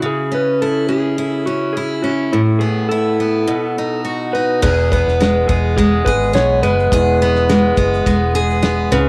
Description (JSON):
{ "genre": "acoustic pop", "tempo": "105 BPM", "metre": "4/4", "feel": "swing 55% on 16ths", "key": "E major", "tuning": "A4 = 440 Hz", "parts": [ { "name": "electric slide guitar", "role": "melody", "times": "0.0-9.1 s", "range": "E4 to C#5", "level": "-21 LUFS", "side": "equal", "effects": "cassette tape, analog delay" }, { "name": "picked steel-string acoustic guitar", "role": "accompaniment", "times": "0.0-9.1 s", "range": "E2 to G#4", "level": "-19 LUFS", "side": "equal", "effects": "none" }, { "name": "vintage muted fingered electric bass", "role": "bass", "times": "4.6-9.1 s", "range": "E1 to C#2", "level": "-21 LUFS", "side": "equal", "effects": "none" }, { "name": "cloth-damped thuddy drum kit", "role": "drums", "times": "4.6-9.1 s", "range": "crash cymbal, kick drum, shaker, snare drum", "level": "-23 LUFS", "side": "equal", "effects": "cassette tape" } ], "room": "moderate spring reverb, RT60 2.3 s", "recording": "home recording on cassette", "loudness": "-16 LUFS", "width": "mono", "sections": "0.0-4.6 A section; 4.6-9.1 B section", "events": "none", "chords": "0.0 C#m; 2.3 Asus2; 3.5 B; 4.6 E" }